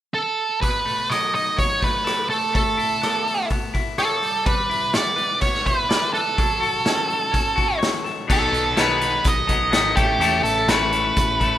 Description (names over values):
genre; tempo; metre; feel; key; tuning
indie rock; 125 BPM; 4/4; straight; unclear; A4 = 440 Hz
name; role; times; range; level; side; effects
octave-fuzz lead guitar; melody; 0.1-11.6 s; G4 to D#5; -21 LUFS; right 2 dB; distortion, analog delay
biting overdriven guitar; riff; 0.6-11.6 s; A2 to D5; -24 LUFS; left 6 dB; none
raw garage drum kit; drums; 0.6-11.5 s; crash cymbal, hi-hat, kick drum, rim click, snare drum; -24 LUFS; equal; none
growling picked electric bass; bass; 8.3-11.6 s; G#1 to A2; -29 LUFS; equal; overdrive
room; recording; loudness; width
moderate small room reverb, RT60 0.5 s; rough home demo mix; -18 LUFS; side -12 dB against mid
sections
0.6-8.3 A section; 8.3-11.6 B section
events
none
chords
0.0 N.C.; 0.6 B7; 2.3 Aadd9; 4.2 Em7/G; 6.4 F#m; 8.3 B7; 10.0 Aadd9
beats
0.14 | 0.62 1.10 1.58 2.06 | 2.54 3.02 3.50 3.98 | 4.46 4.93 5.41 5.89 | 6.37 6.85 7.33 7.81 | 8.29 8.77 9.25 9.73 | 10.21 10.69 11.17